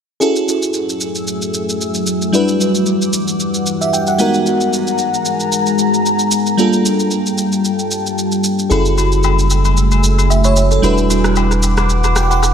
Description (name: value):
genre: amapiano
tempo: 113 BPM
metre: 4/4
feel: swing 55% on 16ths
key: unclear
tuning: A4 = 438 Hz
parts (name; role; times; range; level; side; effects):
- crystalline FM electric piano; accompaniment; 0.2-12.5 s; G3 to G5; -17 LUFS; right 1 dB; chorus, analog delay
- deep dark ambient pad; sustained chords; 1.0-12.5 s; E3 to E6; -19 LUFS; left 2 dB; chorus, built-in reverb
- electronic shaker and rim click; drums; 0.2-12.5 s; none; -22 LUFS; right 1 dB; analog delay
- punchy sub bass; bass; 8.7-12.5 s; E1 to F#1; -14 LUFS; equal; none
- agogo bells and woodblock; percussion; 8.7-12.5 s; none; -22 LUFS; left 12 dB; analog delay
room: light reverb, digital ambience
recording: echo-heavy mix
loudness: -13 LUFS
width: side -8 dB against mid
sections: 0.2-12.5 A section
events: FM electric piano fill 3.7-4.5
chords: 0.2 F#m9; 2.3 Em9; 4.2 G#m9; 6.6 Gm9; 8.7 F#m9; 10.8 Em9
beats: | 0.21 0.74 1.28 1.81 | 2.34 2.87 3.40 3.93 | 4.46 4.99 5.52 6.05 | 6.59 7.12 7.65 8.18 | 8.71 9.24 9.77 10.30 | 10.83 11.37 11.90 12.43